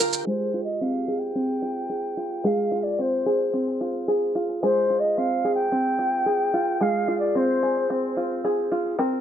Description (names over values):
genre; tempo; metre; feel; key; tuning
folktronica; 110 BPM; 4/4; straight; F dorian; A4 = 440 Hz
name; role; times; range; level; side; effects
open-back banjo; arpeggios; 0.0-9.2 s; D3 to Bb4; -24 LUFS; equal; low-pass filter, tape echo
silver concert flute; melody; 0.3-7.9 s; C5 to G5; -25 LUFS; left 1 dB; tape echo
room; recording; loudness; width
moderate studio reverb, RT60 0.6 s; low-pass filter; -22 LUFS; side -9 dB against mid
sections
0.3-9.2 A section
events
filter sweep on five-string banjo 0.3-9.2; filter sweep 0.3-9.2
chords
0.3 Fm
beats
| 0.26 0.81 1.35 1.90 | 2.44 2.99 3.54 4.08 | 4.62 5.17 5.72 6.26 | 6.81 7.35 7.90 8.44 | 8.99